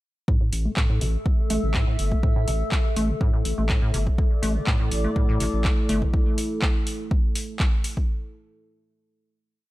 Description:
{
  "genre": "acid house",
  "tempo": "123 BPM",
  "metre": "4/4",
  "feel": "straight",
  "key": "unclear",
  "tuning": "A4 = 436 Hz",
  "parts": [
    { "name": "acid bass, square", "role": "riff", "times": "0.3-6.1 s", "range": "A2 to A3", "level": "-28 LUFS", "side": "equal", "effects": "tube saturation, lush chorus, cassette tape, sidechain pumping, analog delay" },
    { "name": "electronic kick drum", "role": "drums", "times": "0.3-8.1 s", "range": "none", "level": "-22 LUFS", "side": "equal", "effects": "overdrive" },
    { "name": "warbly tape-like pad", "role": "texture", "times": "0.7-6.1 s", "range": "A3 to E6", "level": "-32 LUFS", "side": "left 2 dB", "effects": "chorus, built-in reverb, sidechain pumping" },
    { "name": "saturated sub bass", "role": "bass", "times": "0.5-6.0 s", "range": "G1 to A1", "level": "-25 LUFS", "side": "equal", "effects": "sidechain pumping" },
    { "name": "electro analog drum machine", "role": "drums", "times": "0.5-7.9 s", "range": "handclaps, hi-hat", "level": "-30 LUFS", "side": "equal", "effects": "none" },
    { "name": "dark analog pad", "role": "sustained chords", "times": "4.2-8.0 s", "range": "A3 to A4", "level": "-30 LUFS", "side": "equal", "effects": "chorus, sidechain pumping" }
  ],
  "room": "little or no reverb",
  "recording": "none",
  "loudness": "-21 LUFS",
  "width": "side -17 dB against mid",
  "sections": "0.3-8.1 groove",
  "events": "filter sweep on acid bass 0.3-6.1",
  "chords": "0.3 A5"
}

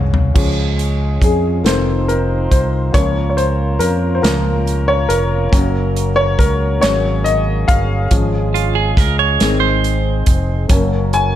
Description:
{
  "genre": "slow gospel",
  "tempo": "46 BPM (dotted quarters)",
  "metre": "6/8",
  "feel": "straight",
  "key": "Db major",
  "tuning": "A4 = 443 Hz",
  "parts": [
    { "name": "clean electric guitar", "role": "second line", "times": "0.0-0.1, 8.5-10.6 s", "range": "F4 to Db5", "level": "-18 LUFS", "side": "right 9 dB", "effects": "none" },
    { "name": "warm baby grand piano", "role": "accompaniment", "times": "0.0-11.4 s", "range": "Eb3 to Ab5", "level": "-18 LUFS", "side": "left 3 dB", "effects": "none" },
    { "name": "fingered electric bass", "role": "bass", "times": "0.0-11.4 s", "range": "F1 to F2", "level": "-17 LUFS", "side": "equal", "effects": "none" },
    { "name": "natural country drum kit", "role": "drums", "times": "0.1-11.3 s", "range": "crash cymbal, hi-hat, kick drum, snare drum, toms", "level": "-16 LUFS", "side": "equal", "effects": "none" },
    { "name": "warm French horn section", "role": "sustained chords", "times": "0.3-11.4 s", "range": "Ab3 to C5", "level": "-24 LUFS", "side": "right 1 dB", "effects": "none" }
  ],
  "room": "light reverb",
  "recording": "none",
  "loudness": "-13 LUFS",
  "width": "side -11 dB against mid",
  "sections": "0.4-11.4 A section",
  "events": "drum fill 0.0-0.4; grand piano solo 0.4-11.4",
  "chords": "0.4 Db; 1.6 F7; 2.9 Bbm/Db; 5.5 Gb; 6.8 Ab9sus4; 8.1 Db/Ab; 9.4 Ab; 10.7 Gb"
}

